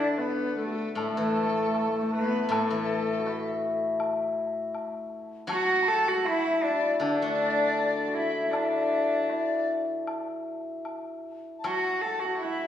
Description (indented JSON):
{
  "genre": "chinese traditional, Chinese chamber ensemble",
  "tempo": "79 BPM",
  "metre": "4/4",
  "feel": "rubato",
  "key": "D gong mode",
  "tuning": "A4 = 440 Hz",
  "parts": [
    { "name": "rich cello", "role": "melody", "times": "0.0-12.7 s", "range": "A3 to A4", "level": "-28 LUFS", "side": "right 1 dB", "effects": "none" },
    { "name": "hammered dulcimer", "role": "second line", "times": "0.0-12.7 s", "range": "A3 to A4", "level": "-30 LUFS", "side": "left 1 dB", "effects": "none" },
    { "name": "large dizi", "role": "second line", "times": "0.0-12.7 s", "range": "F#4 to B5", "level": "-32 LUFS", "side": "left 6 dB", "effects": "none" },
    { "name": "steel-string zither", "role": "accompaniment", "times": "0.0-12.7 s", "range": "A2 to A3", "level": "-34 LUFS", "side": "left 2 dB", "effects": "none" },
    { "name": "woodblock", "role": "percussion", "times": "0.2-12.6 s", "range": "none", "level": "-37 LUFS", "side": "left 1 dB", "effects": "none" }
  ],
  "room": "wet recital hall reverb, RT60 1.4 s",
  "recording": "studio reverb",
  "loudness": "-25 LUFS",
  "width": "side -10 dB against mid",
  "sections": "0.0-12.7 A section",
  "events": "none",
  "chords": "none"
}